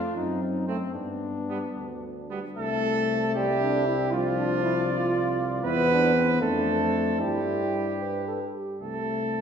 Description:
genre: classical, brass quintet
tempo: 76 BPM (dotted quarters)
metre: 6/8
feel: rubato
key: C major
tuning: A4 = 441 Hz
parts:
  - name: dark cornet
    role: melody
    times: 0.0-9.4 s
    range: C4 to E5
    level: -34 LUFS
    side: left 5 dB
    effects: none
  - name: mellow French horn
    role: accompaniment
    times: 0.0-9.4 s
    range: F3 to C4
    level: -28 LUFS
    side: left 3 dB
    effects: none
  - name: warm tuba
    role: bass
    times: 0.1-9.4 s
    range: C2 to G2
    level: -31 LUFS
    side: right 3 dB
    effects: none
  - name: clear trumpet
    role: second line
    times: 0.7-9.4 s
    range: B3 to B4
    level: -31 LUFS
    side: right 7 dB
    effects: none
  - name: clear trombone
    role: accompaniment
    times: 0.7-8.8 s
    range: G3 to B4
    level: -32 LUFS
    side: right 4 dB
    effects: none
room: wet recital hall reverb, RT60 1.8 s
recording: minimal, uncompressed stereo recording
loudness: -24 LUFS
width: side -7 dB against mid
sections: 0.0-2.6 A section; 2.6-9.4 B section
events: none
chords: 0.1 F#(b5, no3); 0.9 G; 2.6 C; 4.1 Csus24; 5.6 C/E; 6.4 Dm7/F; 7.2 C/G; 8.0 G; 8.8 C

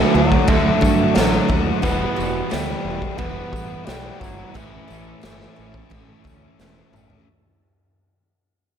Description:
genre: rock, shoegaze and dream pop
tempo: 88 BPM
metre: 4/4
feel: straight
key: A mixolydian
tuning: A4 = 440 Hz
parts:
  - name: warm bassoon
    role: melody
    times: 0.0-6.6 s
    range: E3 to B3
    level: -26 LUFS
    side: equal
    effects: slapback echo
  - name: soft string machine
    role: sustained chords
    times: 0.0-7.2 s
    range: A4 to E6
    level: -33 LUFS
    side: left 2 dB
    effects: phaser, ensemble chorus
  - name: picked twelve-string acoustic guitar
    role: arpeggios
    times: 0.0-7.3 s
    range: F#3 to A4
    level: -29 LUFS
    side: right 6 dB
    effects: none
  - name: biting overdriven guitar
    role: riff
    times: 0.0-7.3 s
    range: E2 to F#4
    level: -28 LUFS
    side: left 10 dB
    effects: wide subtle chorus
  - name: clean electric guitar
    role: riff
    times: 0.0-7.3 s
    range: A2 to F#4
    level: -25 LUFS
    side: right 10 dB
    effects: reverse reverb
  - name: overdriven semi-hollow guitar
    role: riff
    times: 0.0-7.3 s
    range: A2 to E4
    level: -27 LUFS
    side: equal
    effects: none
  - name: growling fingered electric bass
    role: bass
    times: 0.1-7.1 s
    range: E1 to G2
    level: -25 LUFS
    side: equal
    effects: overdrive
  - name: raw garage drum kit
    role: drums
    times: 0.3-7.3 s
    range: crash cymbal, kick drum, snare drum, toms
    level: -23 LUFS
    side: equal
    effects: none
  - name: tambourine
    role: percussion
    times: 0.8-7.1 s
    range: none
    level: -42 LUFS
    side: right 8 dB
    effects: none
room: light reverb, small room ambience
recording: none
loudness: -16 LUFS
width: side -8 dB against mid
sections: 0.0-7.3 A section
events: fade-out 0.0-7.3; drum fill 6.6-7.3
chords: 0.0 Dadd9; 1.9 Emadd9; 4.6 A

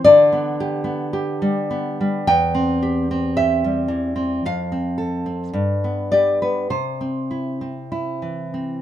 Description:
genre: romantic piece for solo classical guitar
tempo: 54 BPM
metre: 2/4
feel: uneven beats, rubato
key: C major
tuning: A4 = 444 Hz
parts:
  - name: nylon-string guitar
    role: solo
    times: 0.0-8.8 s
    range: E2 to G5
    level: -18 LUFS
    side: left 1 dB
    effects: none
room: moderate studio reverb, RT60 0.8 s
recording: minimal, uncompressed stereo recording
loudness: -18 LUFS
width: side -11 dB against mid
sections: 0.0-8.8 A section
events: none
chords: 0.0 G/D; 2.3 C/E; 4.4 F; 5.5 G7; 6.7 C

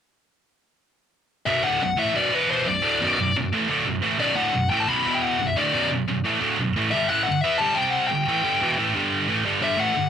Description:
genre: metal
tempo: 177 BPM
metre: 4/4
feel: straight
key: B phrygian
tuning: A4 = 440 Hz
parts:
  - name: high-gain lead guitar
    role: melody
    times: 1.5-10.1 s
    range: B4 to B5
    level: -24 LUFS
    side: left 4 dB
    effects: distortion, cassette tape, tape echo
  - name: scooped high-gain guitar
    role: riff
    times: 1.5-10.1 s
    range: B1 to E4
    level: -22 LUFS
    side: right 2 dB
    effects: distortion, cassette tape
room: light reverb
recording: home recording on cassette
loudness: -20 LUFS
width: side -8 dB against mid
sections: 1.5-10.1 A section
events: none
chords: 1.5 Bm; 2.3 E5; 2.7 Bm; 5.0 E5; 5.4 Bm; 6.9 G5; 7.8 C5; 8.1 G5

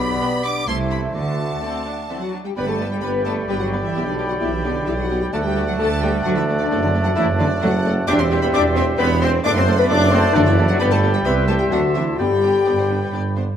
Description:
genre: cinematic, playful, whimsical film cue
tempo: 130 BPM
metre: 3/4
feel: straight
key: G major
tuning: A4 = 443 Hz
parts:
  - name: warm studio violin section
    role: melody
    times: 0.0-13.4 s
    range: B4 to D6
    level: -32 LUFS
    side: left 1 dB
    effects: none
  - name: bright clarinet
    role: second line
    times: 0.0-13.3 s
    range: E4 to E5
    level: -29 LUFS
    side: left 1 dB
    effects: none
  - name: mellow cor anglais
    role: second line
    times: 0.0-13.3 s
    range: C5 to A5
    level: -31 LUFS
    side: right 2 dB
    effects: none
  - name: mellow small flute group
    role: second line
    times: 0.0-13.3 s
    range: D5 to C6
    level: -31 LUFS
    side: left 1 dB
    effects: none
  - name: warm bassoon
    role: accompaniment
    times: 0.0-13.4 s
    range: D3 to B3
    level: -27 LUFS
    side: right 1 dB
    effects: none
  - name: mellow French horn section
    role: sustained chords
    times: 0.0-13.1 s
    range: A3 to D5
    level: -23 LUFS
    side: left 5 dB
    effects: none
  - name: rich studio cello section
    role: bass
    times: 0.0-13.1 s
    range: B2 to D4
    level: -25 LUFS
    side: right 2 dB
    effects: none
  - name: warm studio double bass section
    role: bass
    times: 0.0-13.5 s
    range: G1 to G2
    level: -24 LUFS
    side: right 2 dB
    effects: none
  - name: warm tuba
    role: bass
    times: 0.0-13.5 s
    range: E1 to D2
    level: -25 LUFS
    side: right 3 dB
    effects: none
  - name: rich studio violin section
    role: second line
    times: 0.2-13.1 s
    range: G4 to D6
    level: -31 LUFS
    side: left 1 dB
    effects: none
  - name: rich studio viola section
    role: accompaniment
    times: 0.2-13.4 s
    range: A3 to B4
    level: -28 LUFS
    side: right 1 dB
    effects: none
room: moderate scoring stage reverb, RT60 1.7 s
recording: none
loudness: -16 LUFS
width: side -9 dB against mid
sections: 0.0-2.6 A section; 2.6-13.6 B section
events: none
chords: 0.0 G/B; 0.7 Am/C; 1.1 D; 2.6 G; 3.9 G/B; 5.3 D; 6.7 D/F#; 8.1 C/E; 9.4 D7/F#; 10.8 G; 11.3 Cmaj7; 11.7 D9; 12.2 G

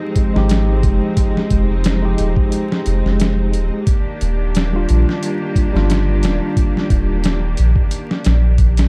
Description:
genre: trip hop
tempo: 89 BPM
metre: 4/4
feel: swing 55% on 16ths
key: unclear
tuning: A4 = 440 Hz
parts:
  - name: overdriven tine electric piano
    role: accompaniment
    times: 0.0-7.4 s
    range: G3 to G4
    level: -24 LUFS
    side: equal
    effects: tremolo, tape echo
  - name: rich symphonic string section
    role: sustained chords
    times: 0.0-8.9 s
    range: Eb3 to G4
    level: -27 LUFS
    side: equal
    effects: vintage 12-bit sampler grit
  - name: boom bap sampler-style drum kit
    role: drums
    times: 0.2-8.9 s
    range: hi-hat, kick drum, snare drum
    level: -20 LUFS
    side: equal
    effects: studio reverb
  - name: soft dub sub bass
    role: bass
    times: 0.4-8.9 s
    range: Eb1 to Bb1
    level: -18 LUFS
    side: equal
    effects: none
room: little or no reverb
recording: dark, warm production, vinyl crackle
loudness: -16 LUFS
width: mono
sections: 0.0-8.9 A section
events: none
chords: 0.0 Fm7; 3.9 Ebmaj7

